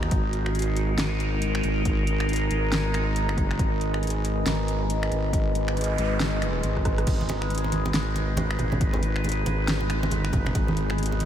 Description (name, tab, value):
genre	deep dubstep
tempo	138 BPM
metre	4/4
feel	swing 60% on 16ths, half-time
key	G# minor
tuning	A4 = 440 Hz
part	overtone-sweeping drone	sustained chords	0.0-11.3 s	G#3 to D#5	-29 LUFS	equal	chorus, built-in reverb
part	wobble bass	bass	0.0-11.3 s	G#1 to D#2	-26 LUFS	equal	chorus
part	deep house drum kit	drums	0.0-11.3 s	crash cymbal, finger snaps, hi-hat, rim click, snare drum	-32 LUFS	equal	overdrive
part	electronic kick drum	drums	0.1-10.7 s	none	-26 LUFS	equal	overdrive
part	noise sweep	sound effects	5.6-7.1 s	none	-37 LUFS	right 2 dB	none
part	congas	percussion	7.1-11.3 s	none	-31 LUFS	right 2 dB	dub echo
room	light reverb, digital ambience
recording	none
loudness	-23 LUFS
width	side -10 dB against mid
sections	0.0-11.3 A section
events	noise sweep 5.6-7.1; drum fill 6.7-7.1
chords	0.0 G#m